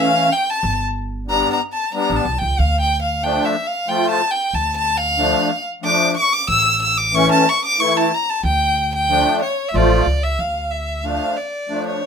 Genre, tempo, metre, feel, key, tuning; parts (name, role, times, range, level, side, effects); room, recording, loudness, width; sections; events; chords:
klezmer; 92 BPM; 3/4; straight; D harmonic minor; A4 = 441 Hz
clear violin; melody; 0.0-12.1 s; C#5 to E6; -18 LUFS; left 1 dB
musette accordion; accompaniment; 0.0-12.0 s; E3 to F4; -19 LUFS; left 1 dB
upright bass; bass; 0.6-11.2 s; G1 to D2; -22 LUFS; right 1 dB
moderate studio reverb, RT60 0.6 s; minimal, uncompressed stereo recording; -16 LUFS; side -6 dB against mid
0.0-10.4 A section; 10.4-12.1 B section
violin solo 0.0-10.4
0.0 A; 0.6 G; 2.6 Dm; 6.5 A; 8.4 Dm